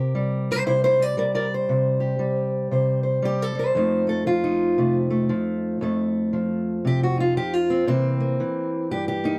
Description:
acoustic country blues, solo or duo; 116 BPM; 4/4; swing 62% on 8ths; A4 = 440 Hz
fingerpicked steel-string acoustic guitar; solo; 0.0-9.4 s; F2 to D5; -23 LUFS; equal
light reverb; close, detailed microphones; -23 LUFS; mono
0.0-9.4 A section
0.0 C7(no3); 3.8 F7; 7.9 C7
0.15 0.66 1.18 | 1.69 2.21 2.72 3.24 | 3.75 4.27 4.78 5.30 | 5.81 6.33 6.84 7.36 | 7.87 8.39 8.90

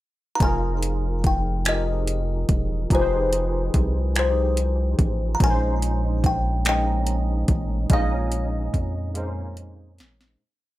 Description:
slow six-eight R&B; 48 BPM (dotted quarters); 6/8; straight; F minor; A4 = 440 Hz
kalimba; melody; 0.4-9.5 s; C5 to Bb5; -27 LUFS; left 3 dB; plate reverb, digital delay
barky tine electric piano; accompaniment; 0.4-10.4 s; Bb2 to Eb5; -28 LUFS; right 1 dB; overdrive, ensemble chorus, plate reverb
rubbery square bass; bass; 0.4-10.4 s; E1 to F2; -24 LUFS; equal
smooth R&B drum kit; drums; 0.4-10.4 s; finger snaps, hi-hat, kick drum, snare drum; -22 LUFS; equal; overdrive
light reverb; -20 LUFS; side -16 dB against mid
0.0-0.4 pickup bar; 0.4-10.4 verse
fade-out 7.9-10.4; drum fill 9.2-10.4
0.4 Fm11; 5.4 Bbm11
| 0.40 1.65 | 2.90 4.15 | 5.40 6.65 | 7.90 9.15

